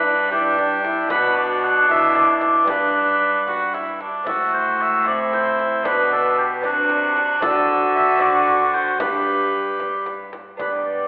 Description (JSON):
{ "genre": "classical, renaissance-style consort dance", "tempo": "76 BPM (dotted quarters)", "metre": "6/8", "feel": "straight", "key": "unclear", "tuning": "A4 = 440 Hz", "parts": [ { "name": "warm oboe", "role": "melody", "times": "0.0-11.1 s", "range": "F#4 to F#5", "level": "-20 LUFS", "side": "equal", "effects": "none" }, { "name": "warm cor anglais", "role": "second line", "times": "0.0-11.1 s", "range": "D4 to G4", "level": "-22 LUFS", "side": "right 1 dB", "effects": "none" }, { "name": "clear trombone", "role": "accompaniment", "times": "0.0-11.1 s", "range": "B3 to G4", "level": "-24 LUFS", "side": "equal", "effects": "none" }, { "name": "lute", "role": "accompaniment", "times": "0.0-11.1 s", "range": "G2 to G4", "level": "-27 LUFS", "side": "right 1 dB", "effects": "none" }, { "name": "rich cello", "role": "bass", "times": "0.0-11.1 s", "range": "G2 to G3", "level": "-28 LUFS", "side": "equal", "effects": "none" }, { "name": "frame drum", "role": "percussion", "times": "0.3-10.8 s", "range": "none", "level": "-34 LUFS", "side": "equal", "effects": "none" } ], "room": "wet recital hall reverb, RT60 1.5 s", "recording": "heard from further back in the room, telephone sound", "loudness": "-16 LUFS", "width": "side -21 dB against mid", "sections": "0.0-10.6 A section", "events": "none", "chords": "0.0 G; 1.1 Bm; 2.7 G; 4.3 Am; 5.9 Bm; 7.4 D7; 9.0 G", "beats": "0.32 | 1.10 1.89 | 2.68 3.48 | 4.27 5.07 | 5.85 6.64 | 7.43 8.21 | 9.01 9.80 | 10.60" }